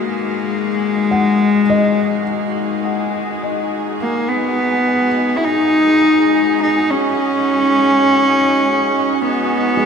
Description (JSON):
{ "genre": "ambient", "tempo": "52 BPM", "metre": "4/4", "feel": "straight", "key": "G# minor", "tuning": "A4 = 440 Hz", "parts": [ { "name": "rich cello", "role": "melody", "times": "0.0-9.9 s", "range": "G#3 to E4", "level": "-14 LUFS", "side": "left 1 dB", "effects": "shimmer reverb, ping-pong delay" }, { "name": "dark chamber string section", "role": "sustained chords", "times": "0.0-9.9 s", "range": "G#3 to G#4", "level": "-22 LUFS", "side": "right 1 dB", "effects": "shimmer reverb" }, { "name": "felt-muted upright piano", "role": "arpeggios", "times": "0.0-9.9 s", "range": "G#3 to F#5", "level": "-23 LUFS", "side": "left 1 dB", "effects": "shimmer reverb, ping-pong delay" } ], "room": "wet concert hall reverb, RT60 2.4 s", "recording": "none", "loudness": "-13 LUFS", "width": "side -6 dB against mid", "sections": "0.0-9.9 A section", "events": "fade-in on string section 0.0-9.9", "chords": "0.0 G#7(no3)" }